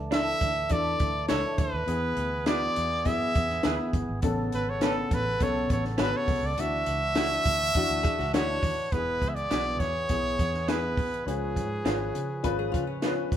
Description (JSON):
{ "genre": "uptempo 1960s-style soul", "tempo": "102 BPM", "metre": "4/4", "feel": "straight", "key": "E mixolydian", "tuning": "A4 = 440 Hz", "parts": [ { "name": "percussive tonewheel organ", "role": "sustained chords", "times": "0.0-13.4 s", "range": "C#3 to B4", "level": "-38 LUFS", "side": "right 2 dB", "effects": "overdrive" }, { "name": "vintage muted fingered electric bass", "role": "bass", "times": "0.0-13.4 s", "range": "E1 to C#3", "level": "-34 LUFS", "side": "equal", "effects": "none" }, { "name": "clear trumpet", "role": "melody", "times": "0.1-13.0 s", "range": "G#4 to E5", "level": "-28 LUFS", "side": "right 1 dB", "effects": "none" }, { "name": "dark upright piano", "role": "accompaniment", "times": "0.1-13.4 s", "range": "B3 to B4", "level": "-33 LUFS", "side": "left 3 dB", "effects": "none" }, { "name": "electric guitar through a small old amp", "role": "stabs", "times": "0.1-13.1 s", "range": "A3 to B4", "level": "-35 LUFS", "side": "right 4 dB", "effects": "none" }, { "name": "compact cocktail drum kit", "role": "drums", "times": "0.1-13.4 s", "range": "hi-hat, kick drum, snare drum", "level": "-30 LUFS", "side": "equal", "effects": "none" }, { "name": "hollow-body jazz guitar", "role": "riff", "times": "8.0-8.9, 12.4-13.4 s", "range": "C#4 to B4", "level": "-37 LUFS", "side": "left 7 dB", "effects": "tube saturation" } ], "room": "moderate large studio reverb, RT60 1.4 s", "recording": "band playing live in one room", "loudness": "-25 LUFS", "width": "side -10 dB against mid", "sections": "0.0-8.9 A section; 8.9-13.4 B section", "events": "none", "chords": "0.0 Dsus2; 1.9 E; 4.2 Aadd9; 6.6 Dadd9; 8.9 E; 11.3 C#7" }